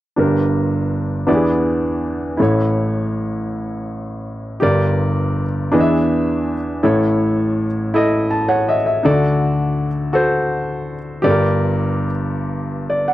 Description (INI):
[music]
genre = gospel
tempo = 54 BPM (dotted quarters)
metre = 6/8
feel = straight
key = unclear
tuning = A4 = 438 Hz
[part]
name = warm baby grand piano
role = solo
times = 0.2-13.1 s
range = G1 to A5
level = -16 LUFS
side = equal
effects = none
[sound]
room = light reverb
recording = dry, close 1970s-style studio recording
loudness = -16 LUFS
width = side -14 dB against mid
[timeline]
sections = 0.2-4.6 A section; 4.6-13.1 B section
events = grand piano fill 7.9-9.0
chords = 0.2 Gm; 1.3 E7; 2.4 A; 4.6 Gm; 5.7 E7; 6.8 A; 9.0 D; 11.3 Gm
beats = | 0.16 1.28 | 2.39 3.50 | 4.62 5.72 | 6.83 7.94 | 9.04 10.15 | 11.25 12.36